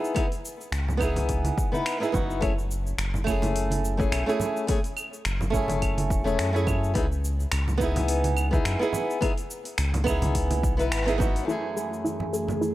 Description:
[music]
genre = sunset chillout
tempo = 106 BPM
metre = 4/4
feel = swing 56% on 16ths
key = F# dorian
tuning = A4 = 441 Hz
[part]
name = flamenco guitar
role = accompaniment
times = 0.0-12.7 s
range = F#2 to B4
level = -27 LUFS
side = equal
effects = auto-pan, analog delay
[part]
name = deep house drum kit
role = drums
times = 0.0-12.7 s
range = cabasa, claves, finger snaps, hi-hat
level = -34 LUFS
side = equal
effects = overdrive
[part]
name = electronic kick drum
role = drums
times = 0.2-11.3 s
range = none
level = -28 LUFS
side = equal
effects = overdrive
[part]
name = round analog bass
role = bass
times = 0.7-11.4 s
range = E1 to F#2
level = -27 LUFS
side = equal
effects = tube saturation
[part]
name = congas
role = percussion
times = 0.9-12.6 s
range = none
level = -32 LUFS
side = right 2 dB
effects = none
[part]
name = airy breathy pad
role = sustained chords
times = 11.5-12.7 s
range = F#2 to G#4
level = -30 LUFS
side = equal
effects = chorus
[part]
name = soft round pluck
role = arpeggios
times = 11.5-12.7 s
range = E4 to A4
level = -31 LUFS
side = left 1 dB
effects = chorus, analog delay
[sound]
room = light reverb, digital ambience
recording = dry, gritty hardware recording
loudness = -23 LUFS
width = side -15 dB against mid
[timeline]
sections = 0.0-11.5 A section; 11.5-12.7 B section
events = band accent 10.9; filter sweep on synth arpeggio sound 11.5-12.7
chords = 0.0 C#m9; 2.4 F#m9; 7.0 C#m9; 11.5 F#m9

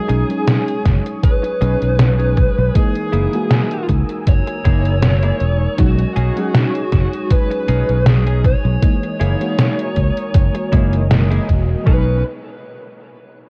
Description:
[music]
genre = vaporwave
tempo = 79 BPM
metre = 4/4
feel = swing 54% on 16ths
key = B major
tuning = A4 = 441 Hz
[part]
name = smooth overdriven lead guitar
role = melody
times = 0.0-12.2 s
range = F#4 to C#5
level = -26 LUFS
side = equal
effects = vintage 12-bit sampler grit, tape echo
[part]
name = FM electric piano with soft pad layer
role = accompaniment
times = 0.0-12.2 s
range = E3 to D#5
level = -26 LUFS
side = equal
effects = tremolo, subtle chorus, cassette tape
[part]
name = soft string machine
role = sustained chords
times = 0.0-12.2 s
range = A#4 to E6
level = -35 LUFS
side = equal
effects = ensemble chorus
[part]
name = clean electric guitar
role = riff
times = 0.1-12.2 s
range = A#3 to G#4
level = -30 LUFS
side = equal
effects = analog chorus, vintage 12-bit sampler grit
[part]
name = fingered electric bass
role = bass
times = 0.1-12.2 s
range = E1 to C#2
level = -19 LUFS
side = equal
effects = none
[part]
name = detuned 8-bit digital drum machine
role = drums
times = 0.1-11.7 s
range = hi-hat, snare drum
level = -19 LUFS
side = equal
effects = vintage 12-bit sampler grit, small room ambience
[part]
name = electronic kick drum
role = drums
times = 0.9-12.0 s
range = none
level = -17 LUFS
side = equal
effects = vintage 12-bit sampler grit, small room ambience
[sound]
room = little or no reverb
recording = cassette tape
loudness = -16 LUFS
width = mono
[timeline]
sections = 0.0-11.9 A section; 11.9-13.5 B section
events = band accent 11.1-11.5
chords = 0.0 B69; 2.8 F#13; 5.8 B69; 8.8 F#13; 11.9 B69

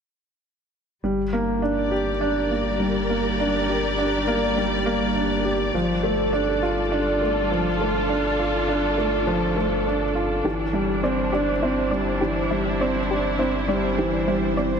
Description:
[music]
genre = electronica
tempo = 102 BPM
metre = 4/4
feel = straight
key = G minor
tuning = A4 = 440 Hz
[part]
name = dark studio string section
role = sustained chords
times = 1.0-14.8 s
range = G3 to D5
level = -26 LUFS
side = left 1 dB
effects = none
[part]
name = dark baby grand piano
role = riff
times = 1.0-14.8 s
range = E3 to G4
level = -22 LUFS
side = right 1 dB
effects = ping-pong delay
[part]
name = warm sub bass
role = bass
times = 1.0-14.8 s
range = G1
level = -31 LUFS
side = left 1 dB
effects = none
[part]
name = soft round pluck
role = arpeggios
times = 10.5-14.7 s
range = E4 to D5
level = -30 LUFS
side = left 3 dB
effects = chorus, ping-pong delay
[sound]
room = moderate lush hall reverb, RT60 2.0 s, small room ambience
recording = none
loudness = -20 LUFS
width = side -6 dB against mid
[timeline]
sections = 1.0-14.8 A section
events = none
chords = 1.0 Gm; 5.7 Dm/G; 10.4 Cadd9/G

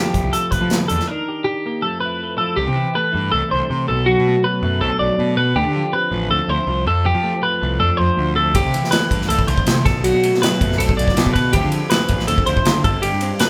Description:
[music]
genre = math rock and midwest emo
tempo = 161 BPM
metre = 4/4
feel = straight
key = F lydian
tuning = A4 = 443 Hz
[part]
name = twelve-string electric guitar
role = accompaniment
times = 0.0-13.5 s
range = F2 to A4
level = -26 LUFS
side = equal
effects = none
[part]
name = twelve-string electric guitar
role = arpeggios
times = 0.0-13.5 s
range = F#4 to D5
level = -22 LUFS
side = equal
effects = none
[part]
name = fuzz picked electric bass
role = bass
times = 0.0-13.3 s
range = G1 to F3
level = -24 LUFS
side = equal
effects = overdrive
[part]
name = modern studio drum kit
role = drums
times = 0.1-1.0, 8.5-13.5 s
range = hi-hat, kick drum, ride cymbal, snare drum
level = -21 LUFS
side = equal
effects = none
[sound]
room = moderate studio reverb, RT60 0.6 s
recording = band playing live in one room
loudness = -18 LUFS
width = mono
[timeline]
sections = 0.0-2.6 A section; 2.6-13.5 B section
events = break 1.1-2.6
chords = 0.0 Fmaj9; 1.1 Ebmaj7; 1.8 Fmaj7; 2.6 C69; 3.9 Bm7; 5.6 Dm11; 6.9 F69; 8.5 C69; 9.9 Bm7; 11.5 Dm11; 12.8 Gsus4

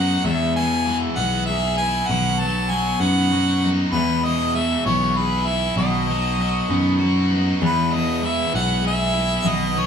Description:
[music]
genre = rock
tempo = 65 BPM (dotted quarters)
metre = 6/8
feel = straight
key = E major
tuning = A4 = 440 Hz
[part]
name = breathy harmonica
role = melody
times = 0.0-9.9 s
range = B4 to A5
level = -23 LUFS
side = equal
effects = none
[part]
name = picked steel-string acoustic guitar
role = accompaniment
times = 0.0-9.9 s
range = B2 to B4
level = -26 LUFS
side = left 3 dB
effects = none
[part]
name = biting overdriven guitar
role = riff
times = 0.0-9.9 s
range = E2 to G#4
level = -25 LUFS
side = equal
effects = none
[part]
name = picked electric bass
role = bass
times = 0.0-9.9 s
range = B1 to F#2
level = -22 LUFS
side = equal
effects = none
[sound]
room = wet small room reverb, RT60 0.5 s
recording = band playing live in one room, small room ambience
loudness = -18 LUFS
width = side -7 dB against mid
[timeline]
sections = 0.0-7.6 A section; 7.6-9.9 A section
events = none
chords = 0.3 E; 2.1 B; 3.9 E; 5.8 B; 7.6 E

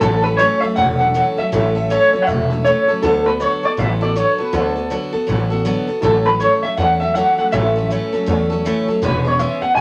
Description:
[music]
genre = rockabilly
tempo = 160 BPM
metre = 4/4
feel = swing 62% on 8ths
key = A major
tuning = A4 = 445 Hz
[part]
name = electric guitar through a small old amp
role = melody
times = 0.0-9.8 s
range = A4 to G#5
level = -19 LUFS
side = equal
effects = tremolo
[part]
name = picked steel-string acoustic guitar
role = accompaniment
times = 0.0-9.8 s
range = A2 to A4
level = -23 LUFS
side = equal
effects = none
[part]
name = upright bass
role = bass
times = 0.0-9.8 s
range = E1 to E2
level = -23 LUFS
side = equal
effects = none
[sound]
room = moderate studio reverb, RT60 0.5 s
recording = none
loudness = -17 LUFS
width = mono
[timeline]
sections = 0.0-9.8 A section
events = none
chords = 0.0 A6; 3.0 D6; 6.0 A6; 9.0 E6

